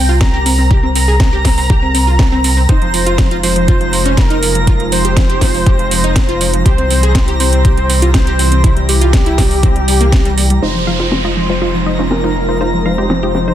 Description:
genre	progressive house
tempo	121 BPM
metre	4/4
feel	straight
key	F minor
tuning	A4 = 440 Hz
part	wide unison lead	melody	0.0-13.5 s	G4 to Bb5	-18 LUFS	equal	sidechain pumping, digital delay
part	wide unison pluck	arpeggios	0.0-13.5 s	F3 to Ab4	-19 LUFS	right 1 dB	sidechain pumping, digital delay
part	saturated sub bass	bass	0.0-13.5 s	F1 to C2	-16 LUFS	equal	sidechain pumping
part	twinkling granular texture	texture	0.0-13.5 s	Bb5	-26 LUFS	right 1 dB	built-in reverb, sidechain pumping
part	electronic kick drum	drums	0.2-10.2 s	none	-12 LUFS	equal	overdrive
part	house drum kit	drums	0.2-13.4 s	hi-hat, snare drum	-18 LUFS	right 2 dB	low-pass filter on hats, low-pass filter on snare
part	airy breathy pad	sustained chords	2.7-13.5 s	C3 to G4	-21 LUFS	equal	chorus, sidechain pumping
part	wide unison pluck	stabs	10.6-13.5 s	Ab3 to F5	-21 LUFS	left 3 dB	sidechain pumping, digital delay
part	downlifter	sound effects	10.6-13.5 s	none	-23 LUFS	right 3 dB	none
room	light reverb, digital ambience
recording	dense, heavily limited modern master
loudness	-10 LUFS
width	side -11 dB against mid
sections	0.0-10.6 A section; 10.6-13.5 B section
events	filter sweep on drum 10.6-13.5; filter sweep on synth pluck 10.6-13.5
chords	0.0 N.C.; 2.7 Fm7; 6.7 C; 10.6 Fm7

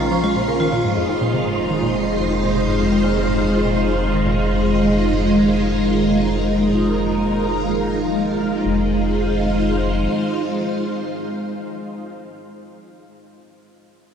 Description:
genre	ambient, sequencer-driven space music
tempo	123 BPM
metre	4/4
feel	straight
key	F minor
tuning	A4 = 440 Hz
part	string machine, full ensemble	sustained chords	0.0-12.3 s	Ab3 to F5	-18 LUFS	equal	phaser, ensemble chorus
part	vibraphone with hard mallets	arpeggios	0.0-0.8 s	F4 to Db6	-27 LUFS	equal	auto-pan, analog delay
part	analog pluck	riff	0.0-8.9 s	F2 to Ab3	-26 LUFS	equal	chorus, analog delay
part	round analog bass	bass	0.0-10.1 s	F1 to Bb1	-25 LUFS	equal	none
part	wind-like tuned noise texture	texture	0.0-8.7 s	C5	-30 LUFS	right 5 dB	built-in reverb
room	wet cathedral reverb, RT60 5.3 s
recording	in a vast, echoing space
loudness	-16 LUFS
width	side -7 dB against mid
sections	0.0-8.6 A section; 8.6-12.6 B section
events	fade-out on synth arpeggio sound 0.0-8.6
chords	0.0 Bbm; 0.8 Fm7

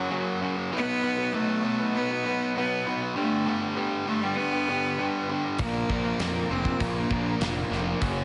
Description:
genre	quiet-loud alternative rock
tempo	99 BPM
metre	4/4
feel	straight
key	unclear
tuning	A4 = 440 Hz
part	bright cello	melody	0.0-7.7 s	F#3 to C4	-31 LUFS	equal	none
part	electric guitar through a small old amp	arpeggios	0.0-8.2 s	F#2 to B4	-35 LUFS	equal	none
part	distorted electric guitar	riff	0.0-8.2 s	F#2 to B3	-32 LUFS	equal	distortion
part	crunchy overdriven guitar	riff	5.6-8.2 s	F#2 to Bb3	-36 LUFS	equal	none
part	fuzz picked electric bass	bass	5.6-8.2 s	F1 to F2	-34 LUFS	equal	overdrive
part	big rock drum kit	drums	5.6-8.2 s	hi-hat, kick drum, snare drum	-34 LUFS	equal	none
room	light reverb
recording	nothing above 10.9 kHz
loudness	-27 LUFS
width	mono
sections	0.0-8.2 A section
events	none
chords	0.0 F#; 0.7 B; 3.2 G; 5.6 Bb

